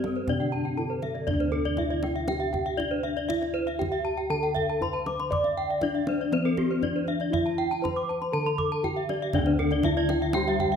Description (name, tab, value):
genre	Balinese gamelan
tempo	119 BPM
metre	4/4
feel	straight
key	D slendro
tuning	A4 = 441 Hz
part	gamelan-type bronze metallophone	melody	0.0-10.8 s	C4-45c to D5	-28 LUFS	left 2 dB	none
part	gamelan-type bronze metallophone	accompaniment	0.0-1.3, 9.3-10.8 s	D3 to G3-35c	-33 LUFS	left 2 dB	none
part	gamelan-type bronze metallophone	arpeggios	0.0-10.7 s	G4-35c to D6	-33 LUFS	right 5 dB	none
part	gamelan-type bossed gongs	bass	0.0-10.8 s	D2 to D5	-31 LUFS	right 1 dB	none
part	kendang	percussion	0.0-10.7 s	none	-36 LUFS	right 2 dB	none
part	gamelan-type bronze metallophone	arpeggios	0.1-10.8 s	A4+25c to D6	-32 LUFS	left 4 dB	none
room	moderate recital hall reverb, RT60 1.6 s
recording	none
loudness	-24 LUFS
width	side -7 dB against mid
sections	0.0-1.3 A section; 1.3-10.8 B section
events	none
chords	none